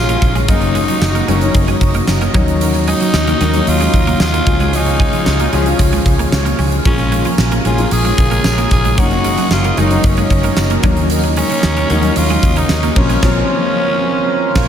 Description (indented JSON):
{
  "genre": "1980s-style pop",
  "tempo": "113 BPM",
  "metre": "4/4",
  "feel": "straight",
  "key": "Bb minor",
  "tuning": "A4 = 440 Hz",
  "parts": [
    { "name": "growling tenor saxophone", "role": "melody", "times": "0.0-14.7 s", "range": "Db4 to Ab4", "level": "-20 LUFS", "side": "equal", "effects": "analog delay" },
    { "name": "warm grand piano", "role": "accompaniment", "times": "0.0-14.7 s", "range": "F3 to F4", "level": "-19 LUFS", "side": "left 4 dB", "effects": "none" },
    { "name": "pedal harmonium", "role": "sustained chords", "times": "0.0-14.7 s", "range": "Gb3 to Bb5", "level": "-23 LUFS", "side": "right 3 dB", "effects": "none" },
    { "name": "vintage muted fingered electric bass", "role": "bass", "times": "0.0-14.7 s", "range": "Gb1 to Eb2", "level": "-17 LUFS", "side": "equal", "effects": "none" },
    { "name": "twelve-string electric guitar", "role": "riff", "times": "0.1-13.2 s", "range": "F3 to Db4", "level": "-24 LUFS", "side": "right 5 dB", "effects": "ensemble chorus" },
    { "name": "huge arena drum kit", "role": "drums", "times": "0.1-14.7 s", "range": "crash cymbal, hi-hat, kick drum, snare drum, tambourine", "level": "-16 LUFS", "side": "equal", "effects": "none" },
    { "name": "analog synth brass", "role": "stabs", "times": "0.5-14.7 s", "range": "Db4 to Db5", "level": "-28 LUFS", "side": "equal", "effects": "none" }
  ],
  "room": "moderate huge ambient reverb, RT60 8.4 s",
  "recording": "dreamy mix soaked in reverb",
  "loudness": "-11 LUFS",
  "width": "side -9 dB against mid",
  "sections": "0.0-14.7 A section",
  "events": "band accent 13.2-14.7; grand piano fill 14.3-14.7",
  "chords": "0.5 Gb6; 2.3 Ebm7; 4.5 Db; 6.9 Bbm7; 9.0 Gb6; 10.8 Ebm7; 13.0 Bbmadd9"
}